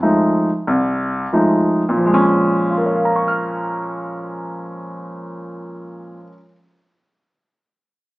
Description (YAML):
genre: solo jazz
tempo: 87-95 BPM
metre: 4/4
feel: swing 69% on 8ths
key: Bb minor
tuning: A4 = 439 Hz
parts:
  - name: warm grand piano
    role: solo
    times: 0.0-6.5 s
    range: C2 to F6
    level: -17 LUFS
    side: equal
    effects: none
room: wet large studio reverb, RT60 1.2 s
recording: band playing live in one room, small speaker sound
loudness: -15 LUFS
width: side -20 dB against mid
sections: 0.0-2.0 A section; 2.0-4.8 B section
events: slowing down 0.0-2.0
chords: 0.0 F7#9; 2.0 Bbm7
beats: 0.03 0.66 1.32 | 2.00 2.69 3.38 4.07